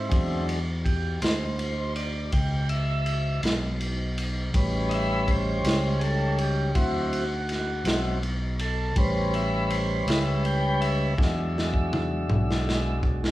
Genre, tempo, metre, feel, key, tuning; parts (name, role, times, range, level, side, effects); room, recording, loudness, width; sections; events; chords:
slow blues; 54 BPM (dotted quarters); 12/8; straight; A mixolydian; A4 = 444 Hz
tonewheel organ; sustained chords; 0.0-13.3 s; F#3 to G5; -28 LUFS; equal; slow rotary speaker
fingered electric bass; bass; 0.0-13.3 s; A1 to E2; -27 LUFS; equal
crunchy breakbeat drum kit; drums; 0.1-13.3 s; kick drum, ride cymbal, snare drum, toms; -28 LUFS; equal
moderate large studio reverb, RT60 0.9 s; band playing live in one room; -23 LUFS; side -16 dB against mid
0.0-13.3 A section
tonewheel organ solo 0.0-13.3; drum fill 11.2-13.3
0.0 E9; 4.5 A9; 6.8 D9; 9.0 A9; 11.2 E9